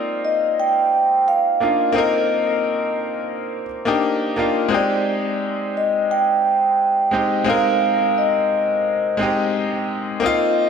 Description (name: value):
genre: chillout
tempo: 87 BPM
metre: 4/4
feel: straight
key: unclear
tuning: A4 = 438 Hz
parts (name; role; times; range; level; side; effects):
- vibraphone with medium mallets; melody; 0.0-10.7 s; D5 to G5; -19 LUFS; right 1 dB; analog delay
- bright grand piano; accompaniment; 0.0-10.7 s; Ab3 to Bb4; -21 LUFS; left 2 dB; auto-pan, diffuse ambient delay
room: wet plate reverb, RT60 2.4 s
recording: dreamy mix soaked in reverb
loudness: -17 LUFS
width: side -6 dB against mid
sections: 0.0-10.7 A section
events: none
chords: 0.0 Cm11; 4.7 Fm7 (rootless)